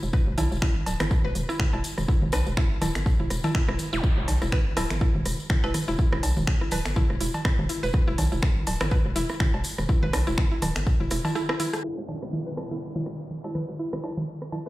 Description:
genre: minimal techno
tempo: 123 BPM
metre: 4/4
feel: swing 56% on 16ths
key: E minor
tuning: A4 = 440 Hz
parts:
  - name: hollow knocking FM bass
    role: bass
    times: 0.0-14.7 s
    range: D1 to B1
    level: -28 LUFS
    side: equal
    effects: sidechain pumping, high-pass filter
  - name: tambourine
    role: percussion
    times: 0.0-14.7 s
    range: none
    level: -40 LUFS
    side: left 3 dB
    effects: none
  - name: mallet-like synth pluck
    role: riff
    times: 0.1-14.7 s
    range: E4 to B4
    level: -33 LUFS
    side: equal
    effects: chorus, sidechain pumping, ping-pong delay
  - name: electronic kick drum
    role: drums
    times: 0.1-11.0 s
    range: none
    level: -24 LUFS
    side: equal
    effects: none
  - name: booming analog drum machine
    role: percussion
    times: 0.1-14.6 s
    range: cowbell, rim click, toms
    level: -30 LUFS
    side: right 1 dB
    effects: overdrive, dub echo
  - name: minimal click drum kit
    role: drums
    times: 0.4-14.7 s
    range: finger snaps, hi-hat, rim click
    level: -34 LUFS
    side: equal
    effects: overdrive
  - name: zap and downlifter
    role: sound effects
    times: 3.9-4.0, 11.8-14.7 s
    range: none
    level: -38 LUFS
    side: equal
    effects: none
  - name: marimba with hard mallets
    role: melody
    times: 5.6-6.0, 13.4-13.8 s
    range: E4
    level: -38 LUFS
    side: equal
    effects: dub echo
room: light reverb, digital ambience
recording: played on a big sound system in a bare room, stone room reverb, low-pass filter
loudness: -23 LUFS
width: side -17 dB against mid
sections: 0.0-11.8 A section; 11.8-14.7 B section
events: drop 0.0-11.8; drum fill 11.4-11.8; band accent 11.7; filter sweep 11.8-14.7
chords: none

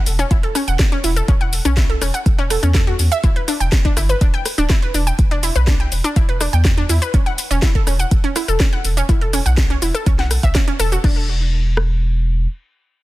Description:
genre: progressive house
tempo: 123 BPM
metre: 4/4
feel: straight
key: unclear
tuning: A4 = 440 Hz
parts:
  - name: round analog bass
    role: bass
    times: 0.1-12.5 s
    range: D1 to E2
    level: -18 LUFS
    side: equal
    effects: sidechain pumping
  - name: house drum kit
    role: drums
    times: 0.1-11.1 s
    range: crash cymbal, hi-hat, rim click, shaker, snare drum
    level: -24 LUFS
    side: left 1 dB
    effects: sidechain pumping on hats, studio reverb, sidechain pumping on perc, sidechain pumping on cymbals
  - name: analog pluck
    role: arpeggios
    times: 0.2-11.3 s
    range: C#4 to G5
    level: -22 LUFS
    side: equal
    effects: chorus, sidechain pumping, digital delay
  - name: house drum kit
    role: drums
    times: 0.3-11.9 s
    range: kick drum, rim click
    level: -15 LUFS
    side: equal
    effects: studio reverb, soft clipping on snare
room: little or no reverb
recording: dense, heavily limited modern master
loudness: -14 LUFS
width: side -17 dB against mid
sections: 0.0-11.0 A section; 11.0-13.0 B section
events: drop 0.0-11.0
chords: 0.0 A5/E; 3.2 E7(no3); 7.1 A/E (rootless); 11.0 N.C.

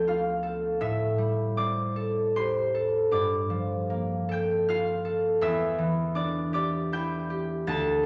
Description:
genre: classical, solo harp piece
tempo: 79 BPM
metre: 3/4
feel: uneven beats, rubato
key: unclear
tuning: A4 = 440 Hz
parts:
  - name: concert harp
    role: solo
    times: 0.0-8.1 s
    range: D2 to A6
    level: -27 LUFS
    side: equal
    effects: none
room: wet recital hall reverb, RT60 1.7 s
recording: none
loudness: -28 LUFS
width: mono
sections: 0.0-8.1 A section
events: none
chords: 0.0 Dm6; 0.8 Am7; 3.1 Gm9; 5.4 Em7

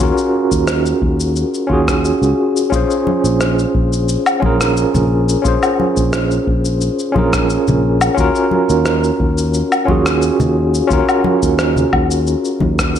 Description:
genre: sunset chillout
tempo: 88 BPM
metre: 4/4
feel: straight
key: unclear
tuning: A4 = 440 Hz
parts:
  - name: overdriven tine electric piano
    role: accompaniment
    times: 0.0-13.0 s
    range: Db4 to C5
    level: -15 LUFS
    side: moving between left 4 dB and right 5 dB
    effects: fast tremolo, auto-pan, tape echo
  - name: sustaining fretless electric bass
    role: bass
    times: 0.0-13.0 s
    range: Bb1 to Eb2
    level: -18 LUFS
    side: equal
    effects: none
  - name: electronic kick drum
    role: drums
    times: 0.0-12.9 s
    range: none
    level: -20 LUFS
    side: equal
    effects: none
  - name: electronic shaker, rim click and woodblock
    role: drums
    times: 0.0-13.0 s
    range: none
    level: -20 LUFS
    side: left 2 dB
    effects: none
  - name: congas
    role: percussion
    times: 3.1-12.8 s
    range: none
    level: -21 LUFS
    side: left 3 dB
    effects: none
room: light reverb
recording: none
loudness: -13 LUFS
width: side -9 dB against mid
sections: 0.0-13.0 A section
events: none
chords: 0.0 Ebm7; 2.7 Bbm9; 8.2 Ebm7

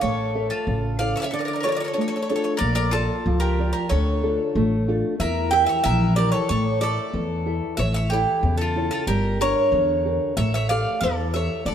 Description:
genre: greek folk, Greek bouzouki band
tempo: 93 BPM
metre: 2/4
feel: straight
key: unclear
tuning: A4 = 441 Hz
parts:
  - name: Greek bouzouki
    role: melody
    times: 0.0-11.7 s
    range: G4 to G5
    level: -24 LUFS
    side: right 2 dB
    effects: none
  - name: bowl-back mandolin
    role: second line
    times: 0.0-11.7 s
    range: E4 to E5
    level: -30 LUFS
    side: left 5 dB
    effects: none
  - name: nylon-string guitar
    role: accompaniment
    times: 0.0-11.7 s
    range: C#3 to E5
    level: -26 LUFS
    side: equal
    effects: none
  - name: upright bass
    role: bass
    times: 0.0-11.7 s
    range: G1 to E2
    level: -24 LUFS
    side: equal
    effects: none
room: moderate plate reverb, RT60 2.7 s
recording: heard from further back in the room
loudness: -20 LUFS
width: side -9 dB against mid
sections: 0.0-2.6 A section; 2.6-11.7 B section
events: none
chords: 0.0 A; 1.3 Dm; 2.6 Bb; 3.9 Dm; 5.2 Edim; 6.5 A; 9.1 Gm; 10.4 A7

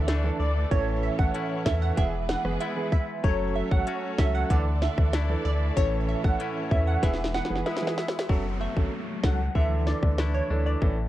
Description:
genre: dancehall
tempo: 95 BPM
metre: 4/4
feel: straight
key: unclear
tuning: A4 = 441 Hz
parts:
  - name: warm baby grand piano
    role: accompaniment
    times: 0.0-11.0 s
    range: E3 to A4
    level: -32 LUFS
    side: right 3 dB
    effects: sidechain pumping
  - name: clear studio string section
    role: sustained chords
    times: 0.0-8.3 s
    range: E3 to D5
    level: -38 LUFS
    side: equal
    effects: sidechain pumping
  - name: direct-recorded clean electric guitar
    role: arpeggios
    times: 0.0-11.1 s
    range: A2 to F#4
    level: -36 LUFS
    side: left 6 dB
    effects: digital delay
  - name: warm sub bass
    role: bass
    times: 0.0-11.1 s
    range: E1 to E2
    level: -27 LUFS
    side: equal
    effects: none
  - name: island pop drum kit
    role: drums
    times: 0.1-11.0 s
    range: hi-hat, kick drum, rim click, snare drum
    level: -25 LUFS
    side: equal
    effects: none
  - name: glassy wavetable pluck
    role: melody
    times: 0.4-10.8 s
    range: C#5 to F#5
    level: -32 LUFS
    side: right 2 dB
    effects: chorus
  - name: downlifter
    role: sound effects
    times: 8.3-11.1 s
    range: none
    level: -38 LUFS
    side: right 1 dB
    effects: none
room: little or no reverb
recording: worn, warbling old tape, cassette tape, warbly pitch drift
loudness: -23 LUFS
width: side -14 dB against mid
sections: 0.0-8.3 A section; 8.3-11.1 B section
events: drum fill 7.0-8.3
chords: 0.0 Dsus2; 0.7 A; 2.0 E; 3.2 F#m; 4.5 Dsus2; 5.8 A; 7.0 E; 8.3 F#m; 9.6 Dsus2

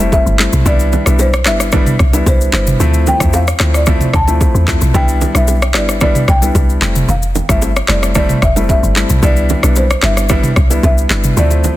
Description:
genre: afrobeats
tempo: 112 BPM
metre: 4/4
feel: straight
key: C major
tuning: A4 = 441 Hz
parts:
  - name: folk marimba with medium mallets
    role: melody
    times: 0.0-11.8 s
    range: C5 to A5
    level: -20 LUFS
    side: equal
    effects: ping-pong delay
  - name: warm concert grand piano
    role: accompaniment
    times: 0.0-11.7 s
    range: F3 to E4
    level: -18 LUFS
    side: left 2 dB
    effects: none
  - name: deep log drum bass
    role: bass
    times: 0.0-11.7 s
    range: F1 to E2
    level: -14 LUFS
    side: equal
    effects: none
  - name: afro-pop drum kit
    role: drums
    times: 0.0-11.8 s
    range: handclaps, kick drum, rim click, shaker, toms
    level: -14 LUFS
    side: equal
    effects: none
  - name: bongos and congas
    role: percussion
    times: 0.1-11.8 s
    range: none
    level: -22 LUFS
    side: right 5 dB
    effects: none
room: small room reverb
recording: dense, heavily limited modern master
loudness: -10 LUFS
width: side -15 dB against mid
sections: 0.0-11.8 A section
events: none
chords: 0.0 Fmaj7; 0.7 Cmaj7; 2.8 Dm7; 4.9 Cmaj7; 6.8 Fmaj7; 9.2 Cmaj7

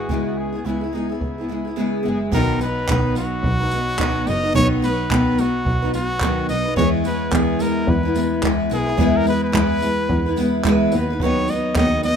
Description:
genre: acoustic pop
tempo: 108 BPM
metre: 4/4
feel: swing 60% on 16ths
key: B major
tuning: A4 = 439 Hz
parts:
  - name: clear trumpet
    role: melody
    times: 0.0-12.2 s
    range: D#4 to D#5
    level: -25 LUFS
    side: equal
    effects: ping-pong delay
  - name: picked steel-string acoustic guitar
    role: accompaniment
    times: 0.0-12.2 s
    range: B2 to B4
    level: -20 LUFS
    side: equal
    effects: double-tracked left and right
  - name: rich double bass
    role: bass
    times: 0.0-12.2 s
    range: F#1 to E2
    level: -25 LUFS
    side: equal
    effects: none
  - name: jazz brush drum kit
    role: drums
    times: 0.1-12.2 s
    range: crash cymbal, handclaps, kick drum, tambourine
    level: -25 LUFS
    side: right 1 dB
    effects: none
  - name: clear concert grand piano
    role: accompaniment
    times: 11.2-12.2 s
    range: C#4 to B4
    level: -33 LUFS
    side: left 6 dB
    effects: none
room: small room ambience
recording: rough home demo mix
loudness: -17 LUFS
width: side -7 dB against mid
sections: 0.0-2.3 A section; 2.3-12.2 B section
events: none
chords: 0.0 C#m7; 2.3 B; 6.8 E; 10.9 B

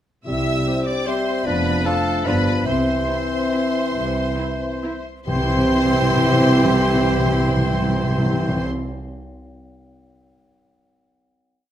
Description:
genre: classical, orchestral ballroom waltz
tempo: 129-162 BPM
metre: 3/4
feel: rubato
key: C major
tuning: A4 = 439 Hz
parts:
  - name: rich studio violin section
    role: melody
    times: 0.3-8.6 s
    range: A5 to E6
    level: -29 LUFS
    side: left 1 dB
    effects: none
  - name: rich studio violin section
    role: second line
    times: 0.3-8.6 s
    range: A4 to E5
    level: -28 LUFS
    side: equal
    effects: none
  - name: warm clarinet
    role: second line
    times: 0.3-8.6 s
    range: C4 to G4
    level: -29 LUFS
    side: left 3 dB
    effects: none
  - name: warm oboe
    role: second line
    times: 0.3-8.6 s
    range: A4 to E5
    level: -30 LUFS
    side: right 1 dB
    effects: none
  - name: mellow bassoon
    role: accompaniment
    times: 0.3-8.6 s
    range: E3 to G3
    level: -26 LUFS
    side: right 2 dB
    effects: none
  - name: dark French horn section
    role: sustained chords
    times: 0.3-8.6 s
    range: A3 to E4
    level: -26 LUFS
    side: left 4 dB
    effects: none
  - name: rich studio double bass section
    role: bass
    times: 0.3-8.6 s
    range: F1 to C2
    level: -28 LUFS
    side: right 2 dB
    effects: none
  - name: warm studio cello section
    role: bass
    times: 0.3-8.6 s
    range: F2 to C3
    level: -26 LUFS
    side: right 3 dB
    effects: none
  - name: timpani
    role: percussion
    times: 0.3-0.8, 5.3-8.6 s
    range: C3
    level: -24 LUFS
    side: equal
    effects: none
  - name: mellow hollow silver concert flute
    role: second line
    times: 0.7-8.6 s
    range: C5 to G5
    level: -27 LUFS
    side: left 3 dB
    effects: none
  - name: rich studio viola section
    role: accompaniment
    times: 0.7-8.6 s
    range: C4 to G4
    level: -27 LUFS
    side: right 1 dB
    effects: none
room: moderate recital hall reverb, RT60 1.3 s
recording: none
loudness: -17 LUFS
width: side -11 dB against mid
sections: 0.3-5.3 A section; 5.3-7.9 final chord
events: slowing down 2.1-5.3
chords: 0.3 C; 1.5 Dm/F; 2.3 G7; 2.7 C

